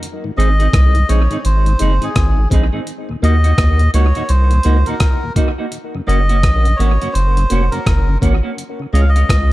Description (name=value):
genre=roots reggae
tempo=84 BPM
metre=4/4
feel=swing 61% on 16ths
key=unclear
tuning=A4 = 440 Hz
part: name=breakbeat sampler-style drum kit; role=drums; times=0.0-9.5 s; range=hi-hat, kick drum, rim click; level=-17 LUFS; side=equal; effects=analog delay
part: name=mellow tonewheel organ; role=accompaniment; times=0.2-9.1 s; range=Eb2 to Gb4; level=-26 LUFS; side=left 3 dB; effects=slow rotary speaker, analog delay
part: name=melodica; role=melody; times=0.4-9.5 s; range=Ab4 to F5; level=-22 LUFS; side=equal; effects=tape echo
part: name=semi-hollow electric guitar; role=accompaniment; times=0.4-9.2 s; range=Ab3 to Ab4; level=-24 LUFS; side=right 4 dB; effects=tape echo
part: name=soft dub sub bass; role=bass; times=0.4-9.5 s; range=F1 to Eb2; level=-13 LUFS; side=equal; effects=none
room=little or no reverb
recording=echo-heavy mix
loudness=-12 LUFS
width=side -17 dB against mid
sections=0.0-9.5 A section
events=none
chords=0.0 Ab; 2.9 Ebm; 5.7 Gb; 8.6 Db